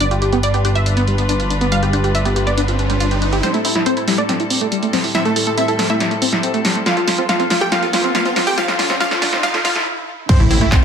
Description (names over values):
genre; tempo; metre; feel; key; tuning
uplifting trance; 140 BPM; 4/4; straight; A minor; A4 = 440 Hz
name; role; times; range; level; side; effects
wide unison pluck; melody; 0.0-10.8 s; C4 to G5; -21 LUFS; right 1 dB; sidechain pumping, ping-pong delay
rich chamber string section; sustained chords; 0.0-10.8 s; F2 to B4; -25 LUFS; left 1 dB; sidechain pumping
tight sequenced synth; arpeggios; 0.0-10.8 s; G3 to A4; -22 LUFS; left 1 dB; chorus, sidechain pumping, ping-pong delay
fat analog bass; bass; 0.0-3.4, 10.4-10.6 s; G1 to A1; -18 LUFS; equal; sidechain pumping
punchy analog drum machine; drums; 0.0-10.8 s; crash cymbal, handclaps, hi-hat, snare drum; -20 LUFS; right 1 dB; sidechain pumping on hats, sidechain pumping on cymbals
riser and impact; sound effects; 1.5-10.8 s; none; -25 LUFS; right 1 dB; none
supersaw stab; second line; 3.4-10.8 s; E4 to G5; -24 LUFS; right 1 dB; sidechain pumping, ping-pong delay
electronic kick drum; drums; 10.3-10.8 s; none; -13 LUFS; equal; none
room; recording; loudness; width
moderate digital room reverb, RT60 1.1 s, digital ambience; high-pass filter; -14 LUFS; side -7 dB against mid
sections
0.0-3.4 A section; 3.4-10.3 B section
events
filter sweep on synth arpeggio sound 0.0-3.4; riser 1.5-3.4, 3.4-9.9; build-up 3.4-10.3; drum fill 3.4-9.9; stop 9.9-10.3; impact 10.3-10.8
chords
0.0 G7; 3.4 Am7; 6.9 F; 10.3 Am7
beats
| 0.01 0.43 0.86 1.29 | 1.72 2.15 2.58 3.00 | 3.43 3.86 4.29 4.72 | 5.15 5.58 6.00 6.43 | 6.86 7.29 7.72 8.15 | 8.58 9.01 9.43 9.86 | 10.29 10.72